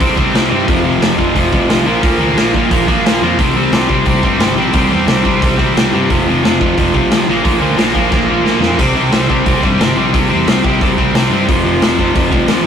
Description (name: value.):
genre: punk rock.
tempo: 178 BPM.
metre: 4/4.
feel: straight.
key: unclear.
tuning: A4 = 436 Hz.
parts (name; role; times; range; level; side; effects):
distorted electric guitar; riff; 0.0-12.7 s; F2 to C4; -12 LUFS; equal; distortion.
modern bright picked electric bass; bass; 0.0-12.7 s; F1 to G2; -21 LUFS; equal; none.
raw garage drum kit; drums; 0.0-12.6 s; hi-hat, kick drum, snare drum, splash cymbal; -16 LUFS; equal; none.
room: light reverb.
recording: rough rehearsal-room recording, warm saturation.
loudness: -10 LUFS.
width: side -8 dB against mid.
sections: 0.0-12.7 A section.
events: drum fill 8.1-8.8.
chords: 0.0 C5; 0.7 F5; 1.9 Bb5; 3.4 C5; 6.1 F5; 7.3 Bb5; 8.8 C5; 11.5 F.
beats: 0.01 0.35 | 0.69 1.03 1.36 1.70 | 2.04 2.38 2.71 3.05 | 3.39 3.73 4.07 4.40 | 4.74 5.08 5.42 5.75 | 6.09 6.43 6.77 7.11 | 7.44 7.78 8.12 8.45 | 8.79 9.13 9.46 9.80 | 10.14 10.47 10.81 11.14 | 11.48 11.81 12.15 12.48.